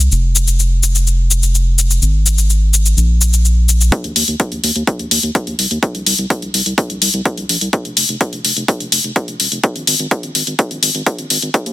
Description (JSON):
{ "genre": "progressive house", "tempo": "126 BPM", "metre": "4/4", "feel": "straight", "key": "unclear", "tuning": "A4 = 437 Hz", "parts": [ { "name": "round analog bass", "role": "bass", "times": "0.0-11.7 s", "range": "Eb1 to Eb2", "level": "-15 LUFS", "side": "equal", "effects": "sidechain pumping, high-pass filter" }, { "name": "electronic shaker and hi-hat", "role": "drums", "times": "0.0-11.7 s", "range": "none", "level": "-16 LUFS", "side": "left 2 dB", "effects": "sidechain pumping on perc, sidechain pumping on hats" }, { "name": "electronic kick drum", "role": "drums", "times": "3.9-11.6 s", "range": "none", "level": "-17 LUFS", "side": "equal", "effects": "high-pass filter on kick" } ], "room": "little or no reverb", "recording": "dense, heavily limited modern master, high-pass filter", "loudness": "-13 LUFS", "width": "side -15 dB against mid", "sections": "0.0-3.9 A section; 3.9-11.7 B section", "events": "build-up 3.9-11.7; drum fill 11.5", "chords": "none", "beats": "| 0.11 0.59 1.06 1.54 | 2.02 2.49 2.97 3.45 | 3.92 4.40 4.87 5.35 | 5.83 6.30 6.78 7.25 | 7.73 8.21 8.68 9.16 | 9.64 10.11 10.59 11.06 | 11.54" }